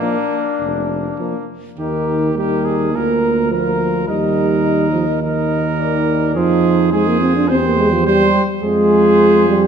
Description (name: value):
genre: classical, brass quintet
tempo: 105 BPM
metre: 4/4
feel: rubato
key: Eb major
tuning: A4 = 440 Hz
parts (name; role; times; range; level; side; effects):
- dark cornet; melody; 0.0-9.7 s; D4 to Eb5; -23 LUFS; left 7 dB; none
- bright trumpet; second line; 0.0-9.7 s; Bb3 to C5; -23 LUFS; right 6 dB; none
- dark euphonium; accompaniment; 0.0-9.7 s; Eb3 to D4; -16 LUFS; right 2 dB; none
- warm French horn; accompaniment; 0.0-9.7 s; Bb3 to G4; -22 LUFS; left 4 dB; none
- mellow tuba; bass; 0.6-9.7 s; F1 to F2; -22 LUFS; right 4 dB; none
room: wet scoring stage reverb, RT60 1.6 s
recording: none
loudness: -13 LUFS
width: side -7 dB against mid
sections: 0.0-1.8 A section; 1.8-9.7 B section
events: none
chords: 0.0 Bb; 1.8 Eb; 2.9 Bb/D; 4.1 Eb; 6.4 Fm7; 7.5 C/E; 8.6 Fm